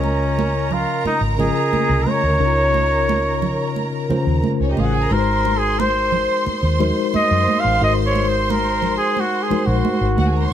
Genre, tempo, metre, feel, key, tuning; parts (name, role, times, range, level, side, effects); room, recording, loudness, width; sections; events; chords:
lush 1970s-style soul; 89 BPM; 4/4; straight; A4 = 440 Hz
warm flugelhorn; melody; 0.0-10.5 s; Db4 to F5; -20 LUFS; right 1 dB
warm studio violin section; second line; 0.0-10.5 s; Db4 to C6; -25 LUFS; right 1 dB
mellow tine electric piano; accompaniment; 0.0-10.5 s; Db3 to Eb5; -22 LUFS; left 4 dB; medium stereo tremolo
vintage muted fingered electric bass; bass; 0.0-10.5 s; Ab1 to Gb2; -21 LUFS; equal
congas; percussion; 0.0-10.3 s; -26 LUFS; right 7 dB
light reverb, studio ambience; -16 LUFS; side -10 dB against mid
0.0-10.5 A section
flugelhorn solo 0.0-10.5
0.0 Db69; 5.1 Ab9